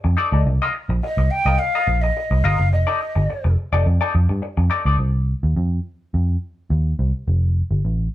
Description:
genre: funk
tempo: 106 BPM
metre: 4/4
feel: straight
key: C dorian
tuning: A4 = 441 Hz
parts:
  - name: semi-hollow electric guitar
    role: accompaniment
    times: 0.0-5.0 s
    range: Eb4 to Eb5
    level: -24 LUFS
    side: left 4 dB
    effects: wah
  - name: vintage muted picked electric bass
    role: bass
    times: 0.0-8.1 s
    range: F1 to G2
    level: -18 LUFS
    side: equal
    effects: none
  - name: breathy mellow jazz flute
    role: melody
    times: 1.0-3.5 s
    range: Eb5 to G5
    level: -22 LUFS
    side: equal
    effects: none
room: moderate studio reverb, RT60 0.7 s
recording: band playing live in one room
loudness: -17 LUFS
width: side -14 dB against mid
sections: 0.0-5.0 A section; 5.0-8.1 B section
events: none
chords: 0.5 Cm7; 2.7 F13; 5.0 Cmadd11; 7.3 Fadd9

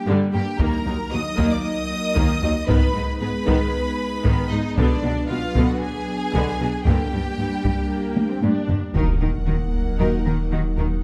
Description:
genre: cinematic, hybrid orchestral and electronic film score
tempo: 115 BPM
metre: 4/4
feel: straight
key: unclear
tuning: A4 = 441 Hz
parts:
  - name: warm symphonic violin section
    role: melody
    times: 0.0-11.0 s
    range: D5 to Eb6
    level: -34 LUFS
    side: equal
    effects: none
  - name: rich symphonic violin section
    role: second line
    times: 0.0-10.8 s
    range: D4 to Eb5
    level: -33 LUFS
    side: equal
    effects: none
  - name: airy breathy pad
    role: sustained chords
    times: 0.0-11.0 s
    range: Gb3 to B4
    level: -30 LUFS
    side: equal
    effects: chorus
  - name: warm symphonic viola section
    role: accompaniment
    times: 0.1-10.9 s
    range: D3 to Ab4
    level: -29 LUFS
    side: equal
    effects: none
  - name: rich symphonic cello section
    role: bass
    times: 0.1-10.9 s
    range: Eb2 to Eb3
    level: -27 LUFS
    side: equal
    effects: none
  - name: taiko ensemble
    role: drums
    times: 0.6-10.0 s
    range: none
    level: -27 LUFS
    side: equal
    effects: none
  - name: mellow French horn section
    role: sustained chords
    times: 8.9-10.2 s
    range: Bb3 to Gb4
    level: -34 LUFS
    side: equal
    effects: none
  - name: warm sub bass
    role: bass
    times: 8.9-11.0 s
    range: Eb1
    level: -26 LUFS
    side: equal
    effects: none
  - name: impact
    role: sound effects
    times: 8.9-11.0 s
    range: none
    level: -30 LUFS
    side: equal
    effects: none
  - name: clear symphonic double bass section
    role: bass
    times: 9.0-10.9 s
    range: Eb2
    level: -30 LUFS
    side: equal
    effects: none
room: moderate scoring stage reverb, RT60 1.6 s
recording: close, detailed microphones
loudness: -22 LUFS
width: mono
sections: 0.0-8.9 A section; 8.9-11.0 B section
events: drum fill 8.2-8.9; impact 8.9-11.0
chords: 0.0 Gm; 0.6 Ebm; 2.7 Abm; 4.8 Bm; 6.9 Gm; 8.9 Ebm

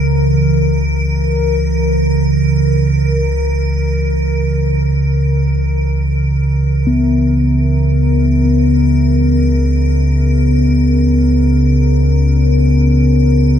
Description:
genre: dark ambient drone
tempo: free time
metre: none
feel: none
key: unclear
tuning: A4 = 440 Hz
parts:
  - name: bronze singing bowl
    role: arpeggios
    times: 0.0-13.2 s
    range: C#3 to B3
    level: -16 LUFS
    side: equal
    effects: ping-pong delay
  - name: deep rumbling drone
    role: drone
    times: 0.0-13.6 s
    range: C#2 to C#3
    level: -13 LUFS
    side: equal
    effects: built-in reverb
  - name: icy glass pad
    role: texture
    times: 0.0-13.6 s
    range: A#4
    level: -22 LUFS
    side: left 3 dB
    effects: chorus, built-in reverb
room: wet huge ambient reverb, RT60 8.5 s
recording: dreamy mix soaked in reverb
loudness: -11 LUFS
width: side -9 dB against mid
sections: 0.0-13.6 A section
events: fade-out on ambient pad 0.0-13.6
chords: none

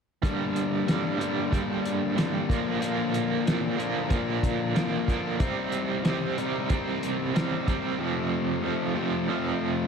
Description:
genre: classic rock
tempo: 93 BPM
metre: 4/4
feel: straight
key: G minor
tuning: A4 = 439 Hz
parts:
  - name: biting overdriven guitar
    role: riff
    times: 0.2-9.9 s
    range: F2 to C4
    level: -28 LUFS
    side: right 10 dB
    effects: tremolo
  - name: distorted electric guitar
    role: riff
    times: 0.2-9.9 s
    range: F2 to Eb4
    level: -29 LUFS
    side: left 10 dB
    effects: distortion
  - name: cloth-damped thuddy drum kit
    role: drums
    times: 0.2-7.8 s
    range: hi-hat, kick drum, snare drum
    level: -28 LUFS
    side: equal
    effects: none
room: light reverb, small room ambience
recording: none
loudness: -25 LUFS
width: side -6 dB against mid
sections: 0.2-9.9 A section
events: none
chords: 0.2 Gm; 2.5 Bb; 5.4 Cm; 8.0 F

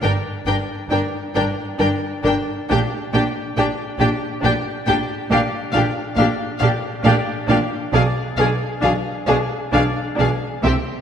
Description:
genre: classical, slow romantic movement for string orchestra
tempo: 68 BPM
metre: 3/4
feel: rubato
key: unclear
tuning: A4 = 440 Hz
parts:
  - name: rich studio violin section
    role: melody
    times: 0.0-10.7 s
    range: E5 to G5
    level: -26 LUFS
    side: left 5 dB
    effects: none
  - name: warm studio violin section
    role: second line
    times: 0.0-10.7 s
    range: G4 to Bb4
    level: -24 LUFS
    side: left 2 dB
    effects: none
  - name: clear studio viola section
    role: accompaniment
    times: 0.0-10.7 s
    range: C4 to D4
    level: -23 LUFS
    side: equal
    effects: none
  - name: warm studio cello section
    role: bass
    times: 0.0-10.7 s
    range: G2 to C3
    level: -25 LUFS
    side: right 2 dB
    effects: none
  - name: warm studio double bass section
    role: bass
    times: 0.0-10.7 s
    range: G1 to C2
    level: -24 LUFS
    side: right 3 dB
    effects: none
room: wet scoring stage reverb, RT60 1.8 s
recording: none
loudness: -17 LUFS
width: side -8 dB against mid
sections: 0.0-11.0 A section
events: none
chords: 0.0 G5; 2.7 Gm/Bb; 7.9 Bm

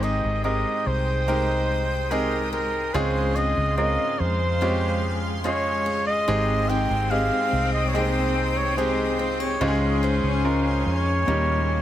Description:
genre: pop ballad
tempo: 72 BPM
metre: 4/4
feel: straight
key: Ab major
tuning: A4 = 440 Hz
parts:
  - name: warm flugelhorn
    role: melody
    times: 0.0-11.8 s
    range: Bb4 to G5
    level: -26 LUFS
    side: equal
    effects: none
  - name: clear baby grand piano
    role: accompaniment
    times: 0.0-11.8 s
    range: Ab2 to C5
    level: -27 LUFS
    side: right 1 dB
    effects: none
  - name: shimmering ambient pad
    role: sustained chords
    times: 0.0-11.8 s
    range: Ab3 to Eb6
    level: -34 LUFS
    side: right 1 dB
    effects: chorus, built-in reverb
  - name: picked steel-string acoustic guitar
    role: arpeggios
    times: 0.0-11.8 s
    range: Db3 to Ab4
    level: -35 LUFS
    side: left 7 dB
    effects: none
  - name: vintage muted fingered electric bass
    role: bass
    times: 0.0-11.8 s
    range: Ab1 to F2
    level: -26 LUFS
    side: equal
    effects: none
  - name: bright chamber cello section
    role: second line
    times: 6.3-11.8 s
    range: Bb3 to Db4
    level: -28 LUFS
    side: left 3 dB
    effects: none
room: light reverb, small room ambience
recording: none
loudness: -21 LUFS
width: side -12 dB against mid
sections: 0.0-11.8 A section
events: none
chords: 0.0 Abmaj7; 2.9 Dbmaj7; 6.3 Abmaj7; 9.6 Dbmaj7; 11.3 Eb7

